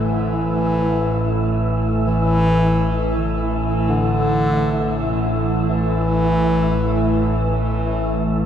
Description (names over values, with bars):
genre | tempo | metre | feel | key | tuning
dark ambient drone | 66 BPM | 4/4 | straight | unclear | A4 = 441 Hz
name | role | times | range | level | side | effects
deep dark ambient pad | sustained chords | 0.0-8.5 s | A3 to B4 | -29 LUFS | right 2 dB | chorus, built-in reverb
dark detuned synth bell | arpeggios | 0.0-8.5 s | D4 to A4 | -41 LUFS | left 2 dB | none
organ-like drone | drone | 0.0-8.5 s | A1 to A2 | -20 LUFS | equal | ensemble chorus, built-in reverb
wind-like tuned noise texture | texture | 0.0-8.5 s | E4 to E5 | -26 LUFS | equal | built-in reverb, lush chorus
clear bass clarinet | melody | 0.3-7.5 s | D3 to E3 | -21 LUFS | left 1 dB | diffuse ambient delay
room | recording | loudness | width
moderate huge ambient reverb, RT60 9.6 s | dreamy mix soaked in reverb | -17 LUFS | side -9 dB against mid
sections
0.0-8.5 A section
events
fade-in on ambient pad 0.0-8.5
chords
0.0 Asus2